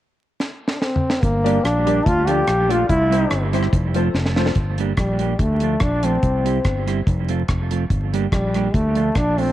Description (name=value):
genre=ska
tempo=144 BPM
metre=4/4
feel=swing 54% on 8ths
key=unclear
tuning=A4 = 440 Hz
part: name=deep reggae drum kit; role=drums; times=0.4-9.5 s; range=hi-hat, kick drum, rim click, snare drum, toms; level=-23 LUFS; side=equal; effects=none
part: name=warm trombone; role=melody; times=0.7-9.5 s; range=G3 to G4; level=-20 LUFS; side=left 1 dB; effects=none
part: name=fingered electric bass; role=bass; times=1.2-9.5 s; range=F1 to D2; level=-21 LUFS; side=equal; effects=none
part: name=mellow electric guitar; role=accompaniment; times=1.4-9.5 s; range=F3 to G4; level=-25 LUFS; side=right 8 dB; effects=tape echo
part: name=dark upright piano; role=stabs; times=1.4-4.5 s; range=C4 to D5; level=-27 LUFS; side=left 9 dB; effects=none
room=moderate spring reverb, RT60 2.1 s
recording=1960s-style stereo with parts hard left and right, vinyl crackle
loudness=-17 LUFS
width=side -14 dB against mid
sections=0.0-1.2 A section; 1.2-4.6 B section; 4.6-9.5 C section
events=drum fill 0.4-1.2, 4.1-4.6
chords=0.0 N.C.; 1.2 Gm; 2.1 Dm; 2.9 C; 3.7 F; 4.6 Gm; 5.4 Dm; 6.2 C; 7.1 F; 7.9 Gm; 8.7 Dm